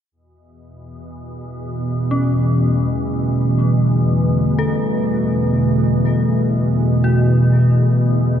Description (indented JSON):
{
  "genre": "dark ambient drone",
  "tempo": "free time",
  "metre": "none",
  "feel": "none",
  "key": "E dorian",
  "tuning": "A4 = 440 Hz",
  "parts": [
    { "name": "dark analog pad", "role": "sustained chords", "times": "1.8-8.4 s", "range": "D3 to B4", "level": "-20 LUFS", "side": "equal", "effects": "chorus, phaser" },
    { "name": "organ-like drone", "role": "drone", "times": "1.1-8.4 s", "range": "E2 to B2", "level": "-17 LUFS", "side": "equal", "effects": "ensemble chorus, built-in reverb" },
    { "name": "dark detuned synth bell", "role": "arpeggios", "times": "2.1-8.4 s", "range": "C#4 to A4", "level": "-26 LUFS", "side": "left 3 dB", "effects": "chorus, tremolo, diffuse ambient delay" }
  ],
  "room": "wet cathedral reverb, RT60 6.2 s",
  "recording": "in a vast, echoing space",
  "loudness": "-14 LUFS",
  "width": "side -9 dB against mid",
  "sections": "0.1-8.4 A section",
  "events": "none",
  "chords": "0.1 Em"
}